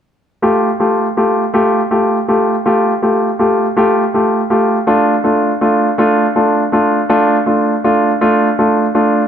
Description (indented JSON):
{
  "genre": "pop",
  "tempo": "54 BPM (dotted quarters)",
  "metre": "6/8",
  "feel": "straight",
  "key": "F major",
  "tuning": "A4 = 440 Hz",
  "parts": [
    { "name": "clear concert grand piano", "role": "accompaniment", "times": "0.4-9.2 s", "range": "A3 to G4", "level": "-11 LUFS", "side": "equal", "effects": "none" }
  ],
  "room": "wet recital hall reverb, RT60 1.7 s",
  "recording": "dark, warm production",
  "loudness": "-11 LUFS",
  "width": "side -8 dB against mid",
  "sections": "0.4-9.3 A section",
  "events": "none",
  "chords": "0.4 Fadd9; 4.9 Dm"
}